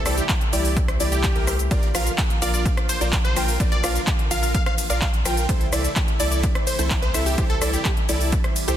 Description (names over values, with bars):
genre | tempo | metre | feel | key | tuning
EDM, festival progressive house | 127 BPM | 4/4 | straight | unclear | A4 = 440 Hz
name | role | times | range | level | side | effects
plucky unison lead | melody | 0.0-8.8 s | G4 to F5 | -29 LUFS | equal | phaser, cassette tape, digital delay
lush unison pad | sustained chords | 0.0-8.8 s | C3 to F4 | -33 LUFS | equal | chorus, sidechain pumping
saturated sub bass | bass | 0.0-8.8 s | Bb1 to C2 | -25 LUFS | equal | sidechain pumping
dark grand piano | arpeggios | 0.1-8.8 s | Bb4 to G5 | -32 LUFS | right 1 dB | sidechain pumping, digital delay
dense compressed supersaw | riff | 0.1-8.8 s | E4 to G5 | -28 LUFS | equal | sidechain pumping, digital delay
big-room dance drum kit | drums | 0.1-8.8 s | handclaps, hi-hat, ride cymbal, rim click, shaker | -26 LUFS | equal | overdrive
electronic kick drum | drums | 0.3-8.4 s | none | -23 LUFS | equal | overdrive
room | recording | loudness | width
little or no reverb | dense, heavily limited modern master | -19 LUFS | side -11 dB against mid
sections
0.0-8.8 A section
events
none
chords
0.0 C; 1.7 Bb; 5.5 Am/C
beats
0.29 0.77 1.24 | 1.71 2.18 2.66 3.13 | 3.60 4.07 4.55 5.02 | 5.49 5.96 6.43 6.91 | 7.38 7.85 8.32